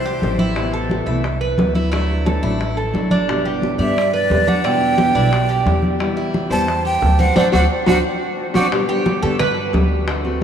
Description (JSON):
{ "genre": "latin, Cuban son and guajira", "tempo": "176 BPM", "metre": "4/4", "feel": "straight", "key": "G major", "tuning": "A4 = 438 Hz", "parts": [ { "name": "breathy jazz flute", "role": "melody", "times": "0.0-0.4, 3.8-8.7 s", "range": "C5 to A5", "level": "-22 LUFS", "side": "right 2 dB", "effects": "none" }, { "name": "Cuban tres", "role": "arpeggios", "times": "0.0-9.7 s", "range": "C4 to E5", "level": "-21 LUFS", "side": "right 3 dB", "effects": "none" }, { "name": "upright bass", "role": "bass", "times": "0.0-10.4 s", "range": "G1 to G2", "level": "-21 LUFS", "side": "equal", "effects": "none" }, { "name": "congas", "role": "percussion", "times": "0.0-10.4 s", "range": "none", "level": "-24 LUFS", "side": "equal", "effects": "none" }, { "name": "fingerpicked steel-string acoustic guitar", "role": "accompaniment", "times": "0.2-10.4 s", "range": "B2 to G4", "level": "-23 LUFS", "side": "left 3 dB", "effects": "none" }, { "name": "bongos", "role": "percussion", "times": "0.2-10.4 s", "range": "none", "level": "-26 LUFS", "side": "left 3 dB", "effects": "none" } ], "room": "wet cathedral reverb, RT60 6.1 s", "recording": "in a vast, echoing space", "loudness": "-15 LUFS", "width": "side -8 dB against mid", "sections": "0.0-8.7 A section; 8.7-10.4 B section", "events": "band accent 7.4-8.7; drum fill 7.9-8.7; Cuban tres solo 8.7-10.4", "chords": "0.0 C6; 0.6 Amadd9; 1.9 Dadd9; 3.3 G; 4.6 Em7; 6.0 Cmaj7/E; 7.4 D7; 8.7 G" }